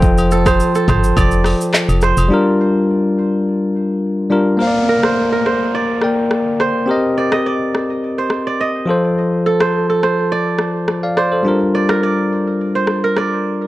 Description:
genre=afrobeats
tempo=105 BPM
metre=4/4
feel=straight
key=Bb major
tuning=A4 = 440 Hz
part: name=bell-like tine electric piano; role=accompaniment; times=0.0-13.7 s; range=F3 to G5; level=-16 LUFS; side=left 2 dB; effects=none
part: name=kora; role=riff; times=0.0-13.7 s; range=A4 to Eb5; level=-19 LUFS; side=right 4 dB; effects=tape echo
part: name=organ-like FM bass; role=bass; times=0.0-2.3 s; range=F1 to G1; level=-16 LUFS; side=equal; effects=none
part: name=afro-pop drum kit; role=drums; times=0.0-13.3 s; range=handclaps, hi-hat, kick drum, rim click, shaker, toms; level=-19 LUFS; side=equal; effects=none
part: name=agogo bells and woodblock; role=percussion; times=0.2-2.3 s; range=none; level=-26 LUFS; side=left 2 dB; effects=none
part: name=downlifter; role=sound effects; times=4.6-9.2 s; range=none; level=-28 LUFS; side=equal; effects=none
room=digital ambience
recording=dry, gritty hardware recording, cassette tape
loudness=-13 LUFS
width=side -16 dB against mid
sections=0.0-4.6 A section; 4.6-13.7 B section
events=break 2.3-4.6; kick muted 4.6-13.7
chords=0.0 F; 2.3 Gm7; 4.6 Bb; 6.9 Cm7; 8.9 F; 11.5 Gm7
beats=| 0.03 0.60 1.17 1.74 | 2.31 2.88 3.45 4.03 | 4.60 5.17 5.74 6.31 | 6.88 7.45 8.03 8.60 | 9.17 9.74 10.31 10.88 | 11.45 12.03 12.60 13.17

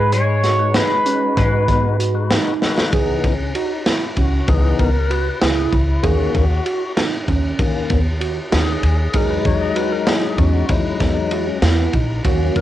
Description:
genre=progressive instrumental, band music in an uneven meter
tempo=193 BPM (eighths)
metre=5/8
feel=straight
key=unclear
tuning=A4 = 440 Hz
part: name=sync lead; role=melody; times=0.0-2.6 s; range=B4 to C#5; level=-19 LUFS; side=equal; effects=chorus, cassette tape, analog delay
part: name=semi-hollow electric guitar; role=second line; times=0.0-2.6 s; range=G#3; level=-27 LUFS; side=left 8 dB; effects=cassette tape, analog delay
part: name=mellow tine electric piano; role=arpeggios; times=0.0-12.6 s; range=B3 to G#4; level=-24 LUFS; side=right 8 dB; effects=medium stereo tremolo, cassette tape, analog delay
part: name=upright bass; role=bass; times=0.0-12.6 s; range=A#1 to G#2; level=-19 LUFS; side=equal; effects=none
part: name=crunchy breakbeat drum kit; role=drums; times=0.1-12.6 s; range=hi-hat, kick drum, ride cymbal, snare drum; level=-20 LUFS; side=equal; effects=cassette tape
part: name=tonewheel organ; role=accompaniment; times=0.6-12.6 s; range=D#3 to D#5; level=-23 LUFS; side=left 7 dB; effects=slow rotary speaker, cassette tape
room=light reverb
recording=home recording on cassette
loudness=-15 LUFS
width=side -13 dB against mid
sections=0.0-2.9 A section; 2.9-12.6 B section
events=drum fill 2.6-2.9; tonewheel organ solo 2.9-12.6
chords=0.0 G#m7; 2.9 C#m7; 6.0 Bmaj7/D# (rootless); 9.1 Emaj7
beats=0.12 0.44 0.75 1.06 | 1.37 1.68 1.99 2.30 2.62 | 2.93 3.24 3.55 3.86 4.17 | 4.48 4.79 5.11 5.42 5.73 | 6.04 6.35 6.66 6.97 7.28 | 7.59 7.90 8.21 8.53 8.84 | 9.15 9.46 9.77 10.08 10.39 | 10.70 11.01 11.32 11.63 11.94 | 12.25 12.56

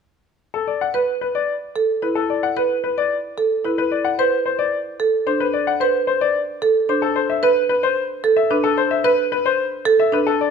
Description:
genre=classical, minimalist pattern music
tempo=111 BPM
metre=3/4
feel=straight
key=unclear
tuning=A4 = 440 Hz
part: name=bright grand piano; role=melody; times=0.5-10.5 s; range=A4 to F#5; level=-20 LUFS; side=left 8 dB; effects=none
part: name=marimba with medium mallets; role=arpeggios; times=0.9-10.3 s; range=D4 to B4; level=-20 LUFS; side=right 6 dB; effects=none
room=moderate recital hall reverb, RT60 1.4 s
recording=close, detailed microphones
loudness=-17 LUFS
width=side -6 dB against mid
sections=0.5-10.5 A section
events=none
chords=0.5 E7sus4; 3.8 D7(no3)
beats=| 0.53 1.07 1.61 | 2.15 2.70 3.24 | 3.78 4.32 4.86 | 5.40 5.94 6.48 | 7.02 7.56 8.10 | 8.64 9.18 9.72 | 10.26

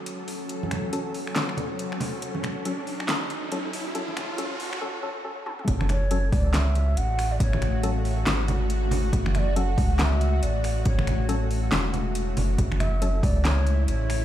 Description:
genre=deep dubstep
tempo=139 BPM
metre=4/4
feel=swing 60% on 16ths, half-time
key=F# minor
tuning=A4 = 438 Hz
part: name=bowed-like drone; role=sustained chords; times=0.0-14.2 s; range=C#3 to A4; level=-32 LUFS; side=left 1 dB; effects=built-in reverb
part: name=riser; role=sound effects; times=1.1-4.8 s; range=none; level=-36 LUFS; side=right 2 dB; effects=none
part: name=deep house drum kit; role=drums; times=0.1-14.2 s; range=finger snaps, handclaps, hi-hat, snare drum, toms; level=-31 LUFS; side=left 1 dB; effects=overdrive, small room ambience
part: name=congas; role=percussion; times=0.6-12.9 s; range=none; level=-33 LUFS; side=right 3 dB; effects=none
part: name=percussive organ stab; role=stabs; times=0.9-13.1 s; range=F#3 to A4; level=-36 LUFS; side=left 3 dB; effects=chorus, dub echo
part: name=soft dub sub bass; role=bass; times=5.7-14.2 s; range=E1 to C#2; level=-24 LUFS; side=equal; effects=none
part: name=electronic kick drum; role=drums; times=5.7-13.3 s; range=none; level=-25 LUFS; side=equal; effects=overdrive, small room ambience
part: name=breathy mellow long shakuhachi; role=melody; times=5.9-14.2 s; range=C#5 to F#5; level=-33 LUFS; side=equal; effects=dub echo
room=light reverb, digital ambience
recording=played on a big sound system in a bare room, stone room reverb, high-pass filter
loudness=-23 LUFS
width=side -12 dB against mid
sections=0.0-5.7 A section; 5.7-14.2 B section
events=build-up 0.0-5.7; filter sweep on synth stab 0.0-5.7; riser 1.1-4.8; break 4.8-5.7; drum fill 5.5; drop 5.7-14.2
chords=0.0 F#m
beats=0.07 | 0.50 0.93 1.36 1.79 | 2.22 2.66 3.09 3.52 | 3.95 4.38 4.81 5.25 | 5.68 6.11 6.54 6.97 | 7.40 7.84 8.27 8.70 | 9.13 9.56 9.99 10.43 | 10.86 11.29 11.72 12.15 | 12.58 13.02 13.45 13.88

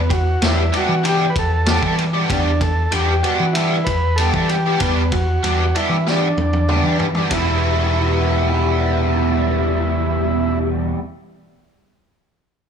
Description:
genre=psychedelic rock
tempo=96 BPM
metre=4/4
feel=straight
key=E minor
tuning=A4 = 440 Hz
part: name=overdriven combo organ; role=melody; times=0.0-10.6 s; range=B3 to B4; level=-22 LUFS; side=right 1 dB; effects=slapback echo
part: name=growling picked electric bass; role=bass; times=0.0-10.9 s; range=E1 to E3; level=-20 LUFS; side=equal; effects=overdrive
part: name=biting overdriven guitar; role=riff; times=0.1-11.0 s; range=E2 to G4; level=-20 LUFS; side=equal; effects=flanger
part: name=vintage drum kit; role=drums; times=0.1-7.5 s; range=kick drum, ride cymbal, snare drum, toms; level=-24 LUFS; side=equal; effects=none
room=small room ambience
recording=studio reverb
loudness=-16 LUFS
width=side -7 dB against mid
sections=0.0-7.3 A section; 7.3-9.8 B section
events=drum fill 6.1-7.3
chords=0.0 Gadd9/E; 7.3 Em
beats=0.41 1.04 1.66 | 2.29 2.92 3.55 4.17 | 4.80 5.43 6.06 6.68 | 7.31 7.94 8.57 9.20

